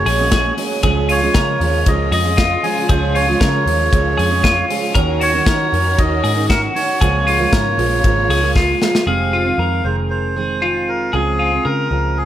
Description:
jangly indie pop; 117 BPM; 4/4; straight; Db major; A4 = 445 Hz
melodica; melody; 0.0-12.3 s; Ab4 to Ab5; -20 LUFS; right 1 dB; plate reverb
fingerpicked steel-string acoustic guitar; accompaniment; 0.0-12.3 s; F2 to Bb4; -22 LUFS; right 7 dB; plate reverb
warm studio string section; sustained chords; 0.0-9.1 s; Db3 to Gb4; -27 LUFS; left 2 dB; plate reverb
twelve-string electric guitar; arpeggios; 0.0-12.3 s; F4 to Bb4; -20 LUFS; left 3 dB; spring reverb, plate reverb
vintage muted picked electric bass; bass; 0.0-12.3 s; F1 to Eb3; -20 LUFS; equal
modern studio drum kit; drums; 0.1-9.1 s; hi-hat, kick drum, ride cymbal, snare drum; -19 LUFS; left 1 dB
light reverb; -14 LUFS; side -11 dB against mid
0.0-9.1 A section; 9.1-12.3 B section
drum fill 8.6-9.1
0.0 Gbadd9; 0.8 Db; 5.0 Ebm7; 7.0 Db6; 9.1 Fm7; 11.1 Dbmaj7
0.32 | 0.83 1.35 1.86 2.38 | 2.89 3.41 3.92 4.44 | 4.95 5.47 5.98 6.50 | 7.01 7.53 8.04 8.55 | 9.07 9.59 10.10 10.62 | 11.13 11.65 12.17

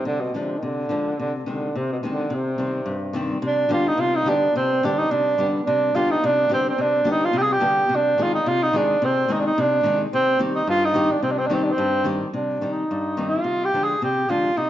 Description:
balkan folk; 108 BPM; 2/4; straight; C harmonic minor; A4 = 440 Hz
mellow tenor saxophone; melody; 0.0-14.7 s; B2 to Ab4; -20 LUFS; right 1 dB
flamenco guitar; accompaniment; 0.1-14.7 s; G2 to Ab4; -25 LUFS; left 2 dB
wet recital hall reverb, RT60 1.6 s; nothing above 7.6 kHz; -19 LUFS; side -12 dB against mid
0.0-3.4 A section; 3.4-12.3 B section; 12.3-14.7 C section
tenor saxophone solo 12.3-14.7
0.1 Ddim; 1.2 Ab/C; 2.3 Cm; 3.4 G/C; 7.9 Ab/C; 10.1 Cm; 13.5 Ddim/C
| 0.07 0.63 | 1.20 1.76 | 2.32 2.88 | 3.44 4.00 | 4.56 5.12 | 5.68 6.24 | 6.79 7.35 | 7.91 8.46 | 9.02 9.57 | 10.13 10.68 | 11.24 11.79 | 12.35 12.90 | 13.46 14.01 | 14.56

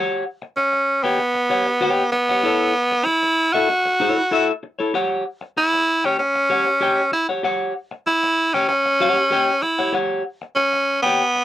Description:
funk; 96 BPM; 4/4; straight; A4 = 437 Hz
clean electric guitar; accompaniment; 0.0-11.4 s; E4 to G5; -21 LUFS; left 3 dB
raspy tenor saxophone; melody; 0.6-11.4 s; B3 to F#4; -17 LUFS; right 1 dB
little or no reverb; dry, close 1970s-style studio recording; -17 LUFS; side -13 dB against mid
0.0-11.4 A section
0.0 A13 (rootless); 2.4 B9sus4; 4.9 Em69
0.57 1.19 1.82 | 2.44 3.07 3.69 4.32 | 4.94 5.57 6.19 6.82 | 7.44 8.06 8.69 9.31 | 9.93 10.56 11.18

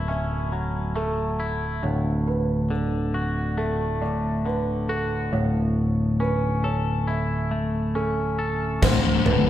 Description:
post-rock; 69 BPM; 4/4; straight; A4 = 440 Hz
felt-muted upright piano; arpeggios; 0.0-9.5 s; A4 to E5; -31 LUFS; right 4 dB
twangy electric guitar; arpeggios; 0.0-9.5 s; D2 to A4; -26 LUFS; left 2 dB
growling picked electric bass; bass; 0.0-9.5 s; D1; -26 LUFS; right 1 dB; overdrive
thick fuzz guitar; riff; 8.8-9.5 s; D2 to A2; -22 LUFS; left 7 dB; distortion
huge arena drum kit; drums; 8.8-9.5 s; crash cymbal, kick drum, snare drum, toms; -22 LUFS; right 1 dB
wet concert hall reverb, RT60 2.1 s; recorded in a church or concert hall; -22 LUFS; side -12 dB against mid
0.0-8.8 A section
drum fill 8.8-9.5
0.0 F#m7/D; 1.8 D; 5.3 Aadd9/D; 8.8 D5
0.09 0.96 | 1.83 2.71 3.58 4.46 | 5.33 6.20 7.08 7.95 | 8.82

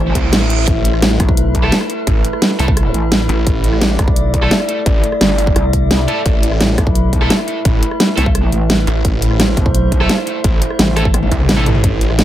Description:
dark technical drum and bass; 172 BPM; 4/4; straight; A minor; A4 = 440 Hz
metallic inharmonic drone; sustained chords; 0.0-12.2 s; A3 to D5; -20 LUFS; equal; chorus, built-in reverb, sidechain pumping
pulsing pluck wobble bass; bass; 0.0-11.3 s; A1 to C2; -16 LUFS; equal; chorus
reverse cymbal; sound effects; 0.1-0.7 s; -23 LUFS; right 6 dB
snarling distorted saw bass; bass; 0.2-12.2 s; G1 to C2; -16 LUFS; equal; distortion, tube saturation
dubstep drum kit; drums; 0.2-12.2 s; hi-hat, rim click, snare drum, toms; -16 LUFS; equal
electronic kick drum; drums; 0.2-11.9 s; -16 LUFS; equal
high-gain distorted guitar; stabs; 1.6-11.6 s; A3 to A4; -22 LUFS; right 2 dB; distortion, digital delay
little or no reverb; -12 LUFS; side -12 dB against mid
0.0-11.8 A section
drop 0.0-11.8; reverse cymbal 0.1-0.7; drum fill 11.1-11.8
0.0 A5
0.33 | 0.68 1.02 1.37 1.72 | 2.07 2.42 2.77 3.12 | 3.47 3.81 4.16 4.51 | 4.86 5.21 5.56 5.91 | 6.26 6.61 6.96 7.30 | 7.65 8.00 8.35 8.70 | 9.05 9.40 9.74 10.09 | 10.44 10.79 11.14 11.49 | 11.84 12.19

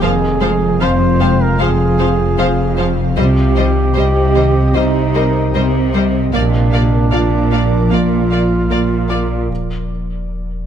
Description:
cinematic, hybrid orchestral and electronic film score; 76 BPM; 4/4; straight; A4 = 441 Hz
dark symphonic violin section; melody; 0.0-9.2 s; Eb5 to F5; -26 LUFS; left 4 dB
mellow duduk; melody; 0.0-9.5 s; D4 to C5; -20 LUFS; right 2 dB; tape echo
rich symphonic violin section; second line; 0.0-9.2 s; C5 to D5; -26 LUFS; left 3 dB
clear symphonic viola section; accompaniment; 0.0-9.2 s; F3 to Bb3; -24 LUFS; equal
ethereal airy pad; sustained chords; 0.0-9.5 s; C3 to F5; -19 LUFS; left 2 dB; ensemble chorus, built-in reverb
harp-like synth pluck; arpeggios; 0.0-9.3 s; C3 to F4; -24 LUFS; equal
rich symphonic double bass section; bass; 0.0-9.4 s; F1 to C2; -19 LUFS; right 3 dB
warm chamber cello section; bass; 0.0-9.4 s; F2 to C3; -20 LUFS; right 2 dB
warm sub bass; bass; 0.0-10.7 s; Eb1 to C2; -21 LUFS; left 1 dB
warm concert grand piano; texture; 0.0-9.5 s; Eb4 to D6; -28 LUFS; left 3 dB; tape echo
light reverb; close, detailed microphones; -12 LUFS; side -9 dB against mid
0.0-10.7 A section
break 9.5-10.7
0.0 Fm; 3.2 Cm; 6.3 Bb; 9.5 N.C.
| 0.02 0.81 1.60 2.39 | 3.18 3.97 4.76 5.55 | 6.34 7.12 7.92 8.70 | 9.49 10.28

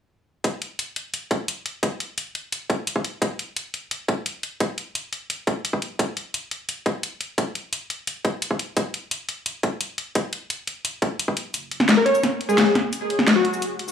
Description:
liquid drum and bass; 173 BPM; 4/4; straight; Gb major; A4 = 435 Hz
drum and bass drum kit; drums; 0.4-13.9 s; cabasa, hi-hat, snare drum; -24 LUFS; left 2 dB; overdrive
electronic kick drum; drums; 0.4-11.3 s; -22 LUFS; equal; overdrive, high-pass filter on kick
warm sub bass; bass; 11.5-13.9 s; Gb1 to Gb2; -42 LUFS; left 1 dB
plucky unison lead; melody; 12.0-13.6 s; Gb4 to Db5; -20 LUFS; left 1 dB; digital delay
moderate recital hall reverb, RT60 1.4 s, digital ambience; studio ambience; -22 LUFS; side -8 dB against mid
0.4-11.5 A section; 11.5-13.9 B section
build-up 11.5-13.9
| 0.44 0.79 1.14 1.48 | 1.83 2.18 2.52 2.87 | 3.22 3.56 3.91 4.26 | 4.61 4.95 5.30 5.64 | 5.99 6.34 6.69 7.03 | 7.38 7.73 8.07 8.42 | 8.77 9.11 9.46 9.81 | 10.15 10.50 10.85 11.19 | 11.54 11.89 12.23 12.58 | 12.93 13.28 13.62

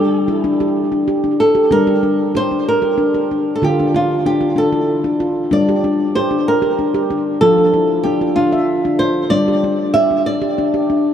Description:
world meditative, meditative tuned percussion; 63 BPM (dotted quarters); 6/8; straight; G dorian; A4 = 442 Hz
flamenco guitar; melody; 0.0-10.8 s; F4 to E5; -17 LUFS; right 1 dB; diffuse ambient delay
handpan; arpeggios; 0.0-11.1 s; D3 to E5; -16 LUFS; left 1 dB; diffuse ambient delay
wet cathedral reverb, RT60 5.4 s; dark, warm production; -13 LUFS; side -9 dB against mid
0.0-1.7 A section; 1.7-11.1 B section
0.0 G5; 1.7 Gm; 3.6 Dm; 5.5 Gm; 7.4 F; 9.3 G5
0.77 | 1.72 2.67 | 3.62 4.58 | 5.52 6.47 | 7.42 8.37 | 9.31 10.26

